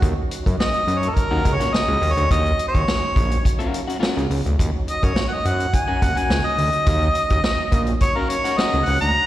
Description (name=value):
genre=funk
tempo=105 BPM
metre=4/4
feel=straight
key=Eb minor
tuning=A4 = 440 Hz
part: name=mellow harmonica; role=melody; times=0.0-9.3 s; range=Gb4 to Bb5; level=-22 LUFS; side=equal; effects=slapback echo
part: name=percussive tonewheel organ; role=sustained chords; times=0.0-9.3 s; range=Gb3 to Gb4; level=-32 LUFS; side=right 2 dB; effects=slow rotary speaker, chorus vibrato
part: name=fat analog bass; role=bass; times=0.0-9.1 s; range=Bb1 to Gb2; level=-21 LUFS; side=equal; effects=none
part: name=vintage drum kit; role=drums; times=0.0-9.1 s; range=hi-hat, kick drum, snare drum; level=-22 LUFS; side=equal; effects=none
part: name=electric guitar at the edge of break-up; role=accompaniment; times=1.3-8.8 s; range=Db4 to Gb5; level=-28 LUFS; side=left 5 dB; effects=slapback echo
room=light reverb, studio reverb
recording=live gig heard through the venue's PA, recital hall reverb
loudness=-17 LUFS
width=side -14 dB against mid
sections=0.0-9.3 A section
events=harmonica solo 0.0-9.3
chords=0.0 Ebm7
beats=| 0.02 0.59 1.17 1.74 | 2.31 2.88 3.45 4.02 | 4.59 5.16 5.73 6.30 | 6.87 7.44 8.01 8.58 | 9.15